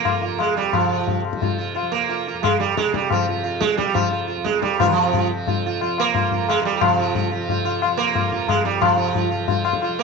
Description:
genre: indian classical, Hindustani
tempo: 178 BPM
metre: 3/4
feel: straight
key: F raga kafi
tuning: A4 = 438 Hz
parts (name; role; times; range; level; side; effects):
- sitar; melody; 0.0-10.0 s; Eb3 to F4; -21 LUFS; right 8 dB; none
- tanpura; drone; 0.0-10.0 s; F2 to F3; -30 LUFS; equal; none
- tabla; percussion; 0.1-9.9 s; none; -22 LUFS; left 8 dB; none
room: wet spring reverb, RT60 1.2 s, small room ambience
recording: 1960s-style stereo with parts hard left and right, nothing above 7.7 kHz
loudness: -18 LUFS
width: side -4 dB against mid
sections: 0.0-4.8 A section; 4.8-10.0 B section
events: none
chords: none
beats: 0.05 0.39 | 0.73 1.07 1.41 | 1.75 2.09 2.43 | 2.77 3.11 3.45 | 3.79 4.12 4.46 | 4.80 5.13 5.47 | 5.81 6.14 6.48 | 6.82 7.15 7.48 | 7.82 8.15 8.49 | 8.82 9.15 9.48 | 9.82

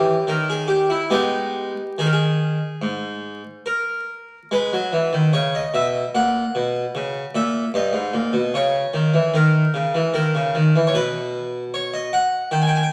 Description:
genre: classical, baroque-style suite movement for harpsichord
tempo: 69-76 BPM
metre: 4/4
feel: rubato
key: G# minor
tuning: A4 = 438 Hz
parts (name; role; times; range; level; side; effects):
- harpsichord; solo; 0.0-12.9 s; G2 to G#5; -21 LUFS; equal; none
room: wet stone room reverb, RT60 1.4 s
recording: vinyl crackle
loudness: -21 LUFS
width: mono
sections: 0.0-4.5 A section; 4.5-12.9 B section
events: none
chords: 0.0 D#7b9; 1.1 G#m; 4.5 G#m (rootless); 6.1 F#/A#; 7.7 D#7(no3); 10.9 N.C.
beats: 0.25 | 1.09 1.96 2.81 3.65 | 4.50 5.32 6.13 6.94 | 7.73 8.53 9.33 10.14 | 10.94 11.73 12.53

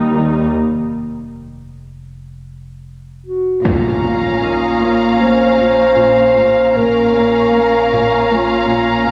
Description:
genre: cinematic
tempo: 77 BPM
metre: 4/4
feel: straight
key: Bb minor from 3.7 s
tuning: A4 = 440 Hz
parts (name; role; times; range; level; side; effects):
- muted symphonic viola section; accompaniment; 0.0-9.1 s; G3 to Eb4; -25 LUFS; equal; none
- muted symphonic cello section; bass; 0.0-9.1 s; Eb2 to Bb2; -21 LUFS; equal; none
- muted symphonic double bass section; bass; 0.0-7.5 s; Bb1 to Eb2; -34 LUFS; equal; none
- warm sub bass; drone; 0.0-9.1 s; F1 to Eb2; -36 LUFS; equal; none
- muted symphonic cello section; riff; 0.1-8.9 s; Bb2 to Bb3; -26 LUFS; equal; none
- dark clarinet; second line; 3.3-9.1 s; F4 to C5; -16 LUFS; equal; none
- muted symphonic violin section; melody; 3.7-9.1 s; Bb5; -25 LUFS; equal; none
- muted symphonic violin section; second line; 3.7-9.1 s; F5; -24 LUFS; equal; none
- impact; sound effects; 3.7-6.8 s; none; -22 LUFS; equal; none
- Celtic harp; texture; 4.4-8.3 s; Eb4 to Eb5; -36 LUFS; equal; none
room: wet scoring stage reverb, RT60 2.0 s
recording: none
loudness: -14 LUFS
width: mono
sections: 0.0-3.7 A section; 3.7-9.1 B section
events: break 0.5-3.7; impact 3.7-6.8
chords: 0.0 Eb; 0.5 N.C.; 3.7 Bbm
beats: | 0.54 1.31 2.09 2.87 | 3.65 4.43 5.21 5.99 | 6.77 7.55 8.33 9.11

